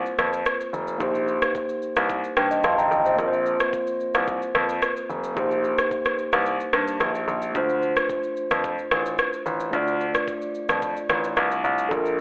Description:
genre	afrobeats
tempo	110 BPM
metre	4/4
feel	straight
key	unclear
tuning	A4 = 440 Hz
part	mellow tine electric piano	accompaniment	0.0-12.2 s	A3 to C6	-25 LUFS	equal	medium stereo tremolo
part	afro-pop drum kit	drums	0.1-12.2 s	kick drum, rim click, shaker	-24 LUFS	equal	none
part	warm concert grand piano	bass	0.2-12.2 s	F1 to G2	-26 LUFS	equal	none
room	moderate lush hall reverb, RT60 1.7 s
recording	telephone sound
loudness	-21 LUFS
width	side -31 dB against mid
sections	0.0-7.5 A section; 7.5-12.2 B section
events	tine electric piano fill 2.1-3.2; kick muted 6.5-7.5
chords	0.0 Bbsus2; 1.0 Cm7/Bb; 3.2 Bbsus2; 5.4 Cm7/Bb; 7.5 Dm7

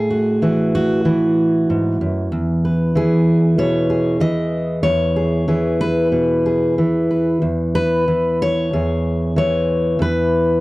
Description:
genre	folk, solo fingerstyle acoustic guitar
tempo	94 BPM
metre	4/4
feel	rubato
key	E major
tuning	A4 = 440 Hz
part	fingerpicked steel-string acoustic guitar	solo	0.0-10.6 s	E2 to D#5	-15 LUFS	equal	none
room	little or no reverb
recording	dry, close 1970s-style studio recording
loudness	-15 LUFS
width	side -19 dB against mid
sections	0.0-7.4 A section; 7.4-10.6 B section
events	none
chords	0.0 A5; 2.3 E; 7.4 C#m7/E; 10.0 E

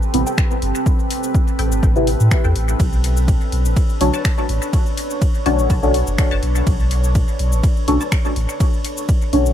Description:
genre	dub techno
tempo	124 BPM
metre	4/4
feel	swing 54% on 16ths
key	unclear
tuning	A4 = 440 Hz
part	deep dark ambient pad	sustained chords	0.0-9.5 s	C4 to C#5	-26 LUFS	right 1 dB	chorus, built-in reverb, sidechain pumping
part	punchy analog drum machine	drums	0.0-9.5 s	finger snaps, hi-hat, ride cymbal, shaker	-28 LUFS	left 2 dB	overdrive, dub echo
part	deep mellow chord stab	stabs	0.1-9.5 s	C4 to C#5	-20 LUFS	left 1 dB	chorus, phaser, sidechain pumping, dub echo
part	warm sub bass	bass	0.1-9.5 s	F#1 to A2	-18 LUFS	equal	sidechain pumping
part	filtered dub chord stab	riff	0.3-8.1 s	A4 to A5	-31 LUFS	left 4 dB	phaser, sidechain pumping, dub echo
part	electronic kick drum	drums	0.4-9.2 s	none	-17 LUFS	equal	overdrive
room	little or no reverb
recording	echo-heavy mix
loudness	-15 LUFS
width	side -10 dB against mid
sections	0.0-9.5 A section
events	filter sweep on synth stab 0.0-9.5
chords	0.0 Am9; 2.8 Bm9

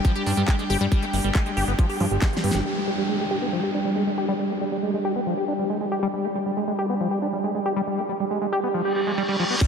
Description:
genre	psychedelic trance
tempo	138 BPM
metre	4/4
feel	straight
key	unclear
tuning	A4 = 441 Hz
part	evolving wavetable pad	sustained chords	0.0-9.7 s	G3	-28 LUFS	right 1 dB	phaser, built-in reverb, sidechain pumping
part	liquid acid bass	riff	0.0-9.7 s	F3 to G4	-26 LUFS	moving between left 4 dB and right 3 dB	chorus, auto-pan, sidechain pumping, tape echo
part	big-room dance drum kit	drums	0.0-2.6, 9.6-9.7 s	crash cymbal, handclaps, hi-hat, snare drum	-32 LUFS	equal	low-pass filter on hats, low-pass filter on snare, low-pass filter on cymbals
part	electronic kick drum	drums	0.0-2.3, 9.6-9.7 s	none	-20 LUFS	equal	none
part	airy breathy pad	texture	0.0-9.6 s	D4 to G5	-33 LUFS	left 1 dB	chorus, sidechain pumping
part	fat analog bass	bass	0.3-2.6 s	G1 to G2	-24 LUFS	equal	none
part	downlifter, reverse cymbal and impact	sound effects	2.7-9.7 s	none	-32 LUFS	equal	none
room	wet huge ambient reverb, RT60 7.4 s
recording	dreamy mix soaked in reverb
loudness	-22 LUFS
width	side -6 dB against mid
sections	0.0-2.7 A section; 2.7-9.6 B section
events	drum fill 2.2-2.7; filter sweep on ambient pad 2.7-9.6; reverse cymbal 8.9-9.6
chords	0.0 G5

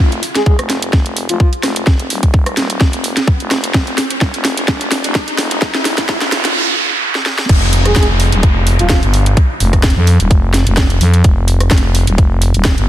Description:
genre	bass house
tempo	128 BPM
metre	4/4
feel	swing 54% on 16ths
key	unclear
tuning	A4 = 440 Hz
part	growling FM bass	bass	0.0-12.9 s	Eb1 to F2	-14 LUFS	equal	sidechain pumping, high-pass filter
part	riser, noise sweep and downlifter	sound effects	0.0-11.2 s	none	-21 LUFS	right 1 dB	none
part	garage drum kit	drums	0.1-12.9 s	crash cymbal, hi-hat, rim click, snare drum	-17 LUFS	equal	overdrive
part	breathy flute-like synth lead	melody	0.4-1.5, 7.9-9.0 s	F4 to Ab4	-21 LUFS	equal	lush chorus, dub echo
part	electronic kick drum	drums	0.5-12.8 s	none	-11 LUFS	equal	overdrive
room	light reverb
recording	dense, heavily limited modern master, high-pass filter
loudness	-11 LUFS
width	side -13 dB against mid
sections	0.0-7.5 A section; 7.5-12.9 B section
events	build-up 0.0-7.5; drum fill 0.0-6.6, 7.1-7.5; riser 0.0-6.6; filter sweep 0.0-7.5; noise sweep 5.6-7.5; drop 7.5-12.9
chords	0.0 Ebsus2

